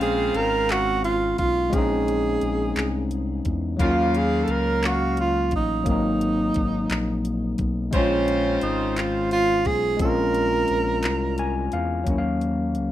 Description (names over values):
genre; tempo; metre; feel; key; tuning
slow six-eight R&B; 58 BPM (dotted quarters); 6/8; straight; Bb minor; A4 = 441 Hz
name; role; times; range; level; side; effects
breathy tenor saxophone; melody; 0.0-11.7 s; Db4 to Bb4; -24 LUFS; right 3 dB; tape echo
overdriven tine electric piano; accompaniment; 0.0-12.9 s; Gb3 to Ab5; -25 LUFS; left 3 dB; none
clear horn section; stabs; 0.0-9.6 s; Db3 to F5; -30 LUFS; left 1 dB; none
smooth synth bass; bass; 0.0-12.9 s; Ab1 to E2; -28 LUFS; equal; none
smooth R&B drum kit; drums; 0.0-12.9 s; handclaps, hi-hat, kick drum; -27 LUFS; equal; none
room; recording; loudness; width
wet studio reverb, RT60 0.6 s; rough home demo mix; -20 LUFS; side -13 dB against mid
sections
0.0-12.1 A section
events
break 11.0-12.1; tine electric piano fill 11.0-12.1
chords
0.0 Bbm9; 3.8 Ebm9; 5.9 Ab9; 7.9 Bbm9; 12.1 Ebm9